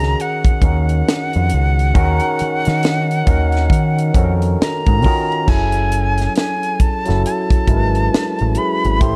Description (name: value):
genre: R&B, neo-soul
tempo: 68 BPM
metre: 4/4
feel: swing 60% on 16ths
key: unclear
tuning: A4 = 440 Hz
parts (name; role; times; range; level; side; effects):
- breathy jazz flute; melody; 0.0-9.2 s; F#5 to C6; -24 LUFS; equal; slapback echo
- barky tine electric piano; accompaniment; 0.0-9.2 s; D#3 to C5; -24 LUFS; equal; overdrive, phaser
- deep dub picked electric bass; bass; 0.0-9.2 s; F#1 to D#3; -19 LUFS; equal; none
- tight funk drum kit; drums; 0.0-9.2 s; crash cymbal, hi-hat, kick drum, snare drum; -19 LUFS; equal; none
room: studio reverb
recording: dark, warm production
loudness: -16 LUFS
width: mono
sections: 0.0-5.5 A section; 5.5-9.2 B section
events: none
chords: 0.0 D#m11; 5.5 F#m9